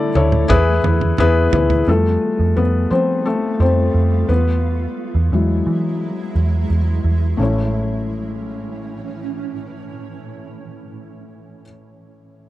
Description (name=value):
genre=piano-driven pop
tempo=87 BPM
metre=4/4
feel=straight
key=A major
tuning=A4 = 441 Hz
part: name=felt-muted upright piano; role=accompaniment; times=0.0-12.5 s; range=A1 to D5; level=-19 LUFS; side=left 3 dB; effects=none
part: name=shimmering ambient pad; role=sustained chords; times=0.0-10.9 s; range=A2 to G#4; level=-30 LUFS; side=right 4 dB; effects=chorus, built-in reverb
part: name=vintage muted picked electric bass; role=bass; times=0.2-11.6 s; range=A1 to F3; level=-17 LUFS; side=right 1 dB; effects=none
part: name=damped 70s drum kit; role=drums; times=0.2-1.9 s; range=kick drum, toms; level=-20 LUFS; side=right 3 dB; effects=none
room=little or no reverb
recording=dry, close 1970s-style studio recording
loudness=-15 LUFS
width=side -15 dB against mid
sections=0.0-1.9 A section; 1.9-7.4 B section; 7.4-10.2 C section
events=drum fill 0.0-1.9; felt piano solo 1.9-7.4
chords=0.5 E; 1.9 Fadd9; 4.3 Eadd9; 7.4 A